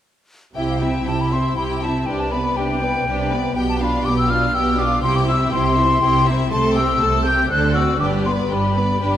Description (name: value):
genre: quick classical-period movement for symphony orchestra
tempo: 121 BPM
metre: 3/4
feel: rubato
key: C major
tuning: A4 = 440 Hz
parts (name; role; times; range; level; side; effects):
- clear chamber violin section; melody; 0.6-9.2 s; B4 to A5; -30 LUFS; left 4 dB; none
- bright concert flute; second line; 0.6-9.2 s; E5 to G6; -21 LUFS; left 2 dB; none
- warm studio violin section; second line; 0.6-9.2 s; E4 to B4; -26 LUFS; left 3 dB; none
- rich chamber viola section; accompaniment; 0.6-9.2 s; A3 to E4; -25 LUFS; right 1 dB; none
- clear chamber double bass section; bass; 0.6-9.2 s; G1 to D2; -24 LUFS; right 3 dB; none
- warm chamber cello section; bass; 0.6-9.2 s; G2 to D3; -24 LUFS; right 2 dB; none
room: wet concert hall reverb, RT60 1.9 s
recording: none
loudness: -16 LUFS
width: side -11 dB against mid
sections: 0.6-9.2 A section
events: none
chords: 0.6 C; 2.1 G/C; 3.6 G7/B; 5.0 C; 6.5 Am7/C; 7.5 D7; 8.0 G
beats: | 0.56 1.07 1.57 | 2.07 2.57 3.06 | 3.56 4.05 4.54 | 5.03 5.52 6.01 | 6.51 7.01 7.50 | 8.00 8.50 9.01